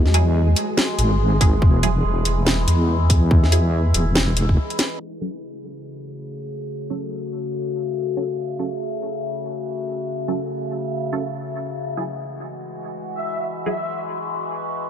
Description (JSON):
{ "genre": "deep dubstep", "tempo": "142 BPM", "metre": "4/4", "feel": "swing 59% on 16ths, half-time", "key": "F# minor", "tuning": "A4 = 441 Hz", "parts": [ { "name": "overtone-sweeping drone", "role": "sustained chords", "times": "0.0-14.9 s", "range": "C#3 to F#4", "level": "-26 LUFS", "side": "left 2 dB", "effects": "chorus, built-in reverb, phaser" }, { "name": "deep soft wobble bass", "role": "bass", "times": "0.0-4.6 s", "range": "E1 to E2", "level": "-18 LUFS", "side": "equal", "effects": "chorus, tube saturation" }, { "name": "flickering grainy texture", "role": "texture", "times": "0.0-5.0 s", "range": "G#3 to G#4", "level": "-30 LUFS", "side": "equal", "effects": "built-in reverb" }, { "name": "filtered dub chord stab", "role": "stabs", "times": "0.1-14.9 s", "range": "F#3 to A4", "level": "-30 LUFS", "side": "right 4 dB", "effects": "phaser, wide subtle chorus, dub echo" }, { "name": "garage drum kit", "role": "drums", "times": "0.1-4.9 s", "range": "hi-hat, snare drum", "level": "-22 LUFS", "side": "equal", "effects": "studio reverb" }, { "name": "electronic kick drum", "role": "drums", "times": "1.4-4.6 s", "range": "none", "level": "-16 LUFS", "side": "equal", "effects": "studio reverb" }, { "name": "breathy flute-like synth lead", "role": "melody", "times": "13.2-14.0 s", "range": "E5", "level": "-29 LUFS", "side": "left 1 dB", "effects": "tremolo, ensemble chorus, vintage 12-bit sampler grit, dub echo" } ], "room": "little or no reverb", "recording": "low-pass filter", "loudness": "-19 LUFS", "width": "side -9 dB against mid", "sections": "0.0-5.0 A section; 5.0-14.9 B section", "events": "break 4.6-5.0; drum fill 4.8; filter sweep 5.0-14.9", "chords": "0.0 Eadd9; 5.0 F#m; 11.8 Eadd9", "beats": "0.35 0.78 1.20 | 1.62 2.04 2.46 2.89 | 3.31 3.73 4.16 4.58 | 5.00 5.42 5.84 6.27 | 6.69 7.11 7.54 7.96 | 8.38 8.80 9.23 9.65 | 10.07 10.49 10.92 11.34 | 11.76 12.18 12.61 13.03 | 13.45 13.87 14.30 14.72" }